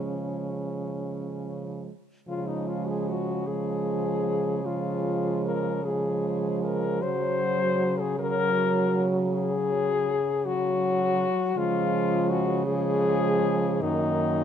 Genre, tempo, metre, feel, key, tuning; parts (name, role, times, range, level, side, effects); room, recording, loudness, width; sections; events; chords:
classical, lyrical piece for horn quartet; 47-55 BPM (dotted quarters); 12/8; rubato; Db major; A4 = 440 Hz
warm French horn; melody; 0.0-14.4 s; Db4 to C5; -28 LUFS; left 6 dB
mellow French horn; second line; 0.0-14.4 s; Gb3 to Bb3; -31 LUFS; right 9 dB
warm French horn; accompaniment; 0.0-14.4 s; Eb3 to Gb3; -31 LUFS; left 1 dB
clear French horn; bass; 0.0-14.4 s; Gb2 to Db3; -32 LUFS; right 3 dB
light reverb; close, detailed microphones; -24 LUFS; side -8 dB against mid
0.0-2.3 A section; 2.3-14.4 A section
0.0 Db; 7.0 Gb5/Db; 11.6 Db; 13.8 Ebm/Gb